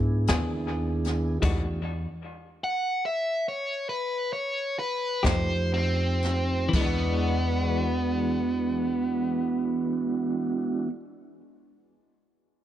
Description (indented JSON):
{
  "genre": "slow blues",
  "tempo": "38-53 BPM (dotted quarters)",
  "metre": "12/8",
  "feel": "straight",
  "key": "E mixolydian",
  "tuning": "A4 = 441 Hz",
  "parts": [
    { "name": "mellow tonewheel organ", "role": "sustained chords", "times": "0.0-10.9 s", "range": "G#3 to G#4", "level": "-34 LUFS", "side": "right 2 dB", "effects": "slow rotary speaker" },
    { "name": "upright bass", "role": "bass", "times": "0.0-10.9 s", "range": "D#2 to G#2", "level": "-29 LUFS", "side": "equal", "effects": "none" },
    { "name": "clean electric guitar", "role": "accompaniment", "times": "0.3-11.0 s", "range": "E3 to G#4", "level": "-33 LUFS", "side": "left 5 dB", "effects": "tremolo, dub echo" },
    { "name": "jazz brush drum kit", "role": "drums", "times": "0.3-7.0 s", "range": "crash cymbal, hi-hat, kick drum, snare drum", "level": "-29 LUFS", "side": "equal", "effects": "none" },
    { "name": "overdriven electric guitar", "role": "melody", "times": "2.6-10.9 s", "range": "B3 to F#5", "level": "-27 LUFS", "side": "right 2 dB", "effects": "none" }
  ],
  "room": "light reverb, studio reverb",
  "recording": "echo-heavy mix",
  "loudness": "-25 LUFS",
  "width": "side -11 dB against mid",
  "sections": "0.0-6.7 A section; 6.7-12.6 B section",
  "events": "slowing down 0.0-6.7; stop 1.4-5.2",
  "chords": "0.0 E7; 1.4 E5; 5.2 F9; 6.7 E9",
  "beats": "0.28 | 1.43 2.62 3.88 5.24 | 6.73 8.30 9.87"
}